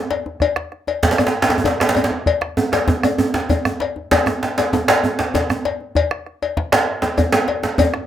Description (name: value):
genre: west african traditional, West African drum ensemble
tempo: 130 BPM (dotted quarters)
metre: 12/8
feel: straight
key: none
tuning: none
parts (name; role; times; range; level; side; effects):
- cowbell; percussion; 0.1-7.9 s; none; -22 LUFS; left 7 dB; none
- djembe; percussion; 0.1-8.1 s; none; -26 LUFS; left 3 dB; none
- bombo; percussion; 0.4-8.1 s; none; -24 LUFS; right 1 dB; none
- djembe; percussion; 1.0-7.9 s; none; -17 LUFS; right 2 dB; none
room: wet small room reverb, RT60 0.5 s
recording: rough home demo mix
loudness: -16 LUFS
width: side -10 dB against mid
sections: 0.0-8.1 A section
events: none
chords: none